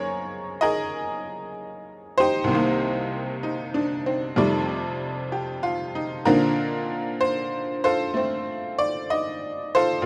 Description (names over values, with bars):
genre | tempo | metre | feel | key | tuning
solo jazz | 64 BPM | 4/4 | swing 68% on 8ths | Bb major | A4 = 440 Hz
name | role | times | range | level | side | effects
tack piano | solo | 0.0-10.1 s | C2 to Eb5 | -25 LUFS | equal | none
room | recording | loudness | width
light reverb | dark, warm production | -25 LUFS | mono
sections
0.0-10.1 A section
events
none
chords
0.0 Gb69; 2.5 Cm7; 4.4 F13; 6.3 Bbmaj9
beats
0.60 1.54 | 2.48 3.42 4.37 5.31 | 6.25 7.20 8.14 9.09 | 10.03